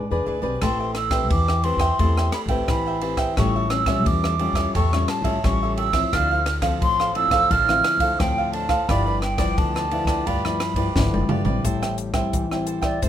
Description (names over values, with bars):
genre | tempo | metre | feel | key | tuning
samba and choro | 87 BPM | 4/4 | straight | unclear | A4 = 440 Hz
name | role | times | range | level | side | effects
cavaquinho | accompaniment | 0.0-13.1 s | D4 to G5 | -28 LUFS | right 4 dB | none
nylon-string guitar | accompaniment | 0.0-13.1 s | G2 to B4 | -27 LUFS | left 4 dB | none
upright bass | bass | 0.0-13.1 s | F1 to A2 | -26 LUFS | equal | none
hollow wooden flute | melody | 0.6-13.1 s | C5 to F6 | -23 LUFS | right 2 dB | none
compact cocktail drum kit | drums | 0.6-13.1 s | hi-hat, kick drum, ride cymbal, rim click, snare drum, toms | -25 LUFS | equal | none
room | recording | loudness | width
moderate studio reverb, RT60 0.6 s | minimal, uncompressed stereo recording | -19 LUFS | side -10 dB against mid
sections
0.0-11.6 A section; 11.6-13.1 B section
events
drum fill 11.0-11.6; flute solo 11.6-13.1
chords
0.0 E7; 0.6 Am9; 3.4 A7b13; 6.1 Dm9; 8.9 G13; 11.6 Am7